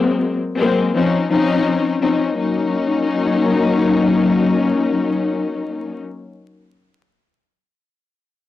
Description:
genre	hip hop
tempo	84 BPM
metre	4/4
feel	swing 60% on 16ths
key	Eb dorian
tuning	A4 = 439 Hz
part	warm studio string section	accompaniment	0.0-6.0 s	F3 to Eb4	-16 LUFS	left 3 dB	cassette tape, high-pass filter, low-pass filter
room	moderate booth ambience, RT60 0.3 s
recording	home recording on cassette, vinyl crackle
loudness	-15 LUFS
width	side -13 dB against mid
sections	0.0-2.4 A section; 2.4-5.2 B section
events	none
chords	0.0 Ab9; 0.9 Dbmaj9; 2.4 Ebm7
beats	0.23 0.94 1.66 | 2.37 3.08 3.80 4.51

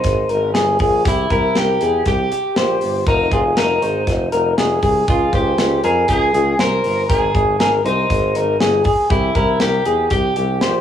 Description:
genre	jangly indie pop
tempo	119 BPM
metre	4/4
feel	straight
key	unclear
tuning	A4 = 439 Hz
part	electric guitar at the edge of break-up	melody	0.0-10.8 s	Eb4 to Bb4	-21 LUFS	right 2 dB	cassette tape
part	electric guitar through a small old amp	arpeggios	0.0-10.8 s	G4 to C5	-18 LUFS	left 2 dB	cassette tape, tape echo
part	warm tuba	bass	0.0-10.8 s	F1 to F2	-20 LUFS	equal	none
part	modern studio drum kit	drums	0.0-10.7 s	hi-hat, kick drum, snare drum	-21 LUFS	equal	cassette tape
room	light reverb, studio ambience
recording	home recording on cassette, small room ambience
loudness	-14 LUFS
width	side -9 dB against mid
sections	0.0-10.8 A section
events	none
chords	0.0 Ab; 1.1 C7; 3.1 Fm; 5.1 Db5; 7.1 Ab; 9.1 C7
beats	0.05 0.56 | 1.06 1.56 2.06 2.57 | 3.07 3.57 4.08 4.58 | 5.08 5.59 6.09 6.59 | 7.09 7.60 8.10 8.60 | 9.11 9.61 10.11 10.62

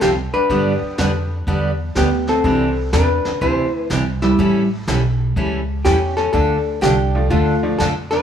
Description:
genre	country, western swing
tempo	123 BPM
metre	4/4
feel	swing 66% on 8ths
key	C major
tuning	A4 = 439 Hz
part	hollow-body jazz guitar	melody	0.0-8.2 s	G3 to C5	-18 LUFS	left 1 dB	none
part	picked steel-string acoustic guitar	accompaniment	0.0-7.9 s	C3 to A4	-22 LUFS	right 3 dB	none
part	upright bass	bass	0.0-8.2 s	A1 to G2	-21 LUFS	equal	none
part	vintage brush drum kit	drums	0.0-8.2 s	brushed snare drum, hi-hat, kick drum, snare drum	-28 LUFS	left 1 dB	none
part	tack piano	accompaniment	0.5-2.7, 7.1-7.8 s	D3 to G4	-26 LUFS	left 4 dB	none
room	light reverb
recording	small room ambience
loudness	-15 LUFS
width	side -8 dB against mid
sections	0.0-8.2 A section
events	none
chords	0.5 G; 2.4 Cadd9; 4.4 A7; 6.3 Dm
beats	0.01 | 0.50 0.98 1.47 1.96 | 2.44 2.93 3.42 3.90 | 4.39 4.88 5.37 5.85 | 6.34 6.83 7.31 7.80

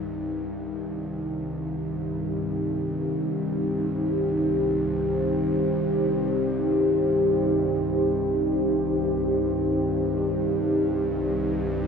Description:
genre	dark ambient drone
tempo	free time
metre	none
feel	none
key	C minor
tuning	A4 = 443 Hz
part	deep dark ambient pad	sustained chords	0.0-11.9 s	Eb4 to C5	-23 LUFS	equal	chorus, built-in reverb
part	bowed-like drone	drone	0.0-11.9 s	C2 to G2	-33 LUFS	right 1 dB	built-in reverb
room	wet lush hall reverb, RT60 2.6 s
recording	dreamy mix soaked in reverb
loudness	-23 LUFS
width	side -6 dB against mid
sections	0.0-11.9 A section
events	fade-in on synth drone 0.0-11.9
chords	0.0 C5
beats	free time

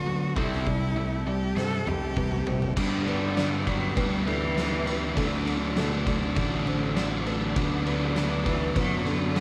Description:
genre	post-rock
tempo	100 BPM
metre	4/4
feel	straight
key	G major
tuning	A4 = 435 Hz
part	clear cello	melody	0.0-9.4 s	B2 to A4	-34 LUFS	equal	analog delay
part	dark studio string section	sustained chords	0.0-9.4 s	A4 to D6	-43 LUFS	equal	none
part	clean electric guitar	arpeggios	0.0-9.4 s	G2 to E4	-40 LUFS	equal	none
part	felt-muted upright piano	arpeggios	0.0-9.4 s	A4 to D5	-41 LUFS	equal	analog delay
part	crunchy overdriven guitar	riff	0.0-9.4 s	G2 to D4	-32 LUFS	equal	none
part	distorted electric guitar	riff	0.0-2.7 s	C3 to C4	-40 LUFS	equal	none
part	fuzz fingered electric bass	bass	0.0-9.4 s	A1 to D3	-34 LUFS	equal	overdrive
part	oversized low-tuned drum kit	drums	0.4-9.4 s	crash cymbal, kick drum, snare drum, toms	-33 LUFS	equal	none
room	moderate plate reverb, RT60 2.5 s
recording	dreamy mix soaked in reverb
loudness	-27 LUFS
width	mono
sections	0.0-2.8 A section; 2.8-9.4 B section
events	build-up 0.0-2.8; drum fill 1.6-2.8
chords	0.4 C6; 2.8 G; 5.2 D; 7.6 Bm/D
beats	| 0.37 0.97 1.57 2.17 | 2.77 3.37 3.97 4.57 | 5.17 5.76 6.36 6.96 | 7.56 8.16 8.76 9.36

